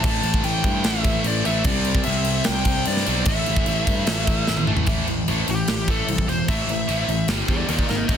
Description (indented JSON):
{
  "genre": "hard rock",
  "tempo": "149 BPM",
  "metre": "4/4",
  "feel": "straight",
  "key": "A minor",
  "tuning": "A4 = 440 Hz",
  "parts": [
    { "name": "bluesy overdriven lead guitar", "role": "melody", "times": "0.0-8.2 s", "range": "G4 to A5", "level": "-27 LUFS", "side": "equal", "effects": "distortion, slapback echo" },
    { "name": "high-gain distorted guitar", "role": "riff", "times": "0.0-8.2 s", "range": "G2 to D#4", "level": "-24 LUFS", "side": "equal", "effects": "distortion" },
    { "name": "fuzz picked electric bass", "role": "bass", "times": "0.0-8.2 s", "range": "E1 to G2", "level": "-25 LUFS", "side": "equal", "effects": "overdrive" },
    { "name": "tight metal drum kit", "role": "drums", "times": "0.0-8.2 s", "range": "crash cymbal, kick drum, snare drum, toms", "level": "-23 LUFS", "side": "equal", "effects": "none" }
  ],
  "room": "little or no reverb",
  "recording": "dense, heavily limited modern master",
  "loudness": "-19 LUFS",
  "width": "side -8 dB against mid",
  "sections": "0.0-4.9 A section; 4.9-8.2 B section",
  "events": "drum fill 4.5-4.9; lead electric guitar solo 4.9-8.2",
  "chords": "0.0 A5; 1.7 C; 3.3 A5; 7.3 G5; 7.7 D#5",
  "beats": "| 0.05 0.45 0.85 1.26 | 1.66 2.06 2.46 2.87 | 3.27 3.67 4.07 4.47 | 4.88 5.28 5.68 6.08 | 6.48 6.89 7.29 7.69 | 8.09"
}